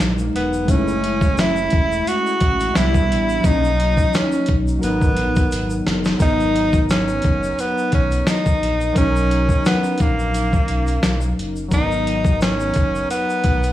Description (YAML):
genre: lo-fi hip hop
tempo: 87 BPM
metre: 4/4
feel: swing 56% on 16ths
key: B major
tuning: A4 = 439 Hz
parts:
  - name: clear tenor saxophone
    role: melody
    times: 0.0-13.7 s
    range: A#3 to F#4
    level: -21 LUFS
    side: right 1 dB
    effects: analog delay
  - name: warbly lo-fi synth keys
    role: accompaniment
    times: 0.0-13.7 s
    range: F#3 to A#4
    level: -23 LUFS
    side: equal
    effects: chorus
  - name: sub bass with octave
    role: bass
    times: 0.0-13.7 s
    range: E1 to C2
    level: -23 LUFS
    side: equal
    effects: none
  - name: dusty soul sampler-style drum kit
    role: drums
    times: 0.0-13.7 s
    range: hi-hat, kick drum, snare drum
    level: -19 LUFS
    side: equal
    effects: none
  - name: tube shaker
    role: percussion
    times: 0.0-13.7 s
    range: none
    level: -40 LUFS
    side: left 4 dB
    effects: none
room: digital ambience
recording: dry, gritty hardware recording, vinyl crackle, studio reverb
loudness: -16 LUFS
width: side -13 dB against mid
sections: 0.0-6.2 A section; 6.2-13.7 B section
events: drum fill 5.5-6.2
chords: 0.0 G#sus2; 0.7 F#m7; 2.8 Cmaj7; 3.4 Bmaj7; 4.8 G#m9; 9.0 Bmaj7; 11.7 G#m7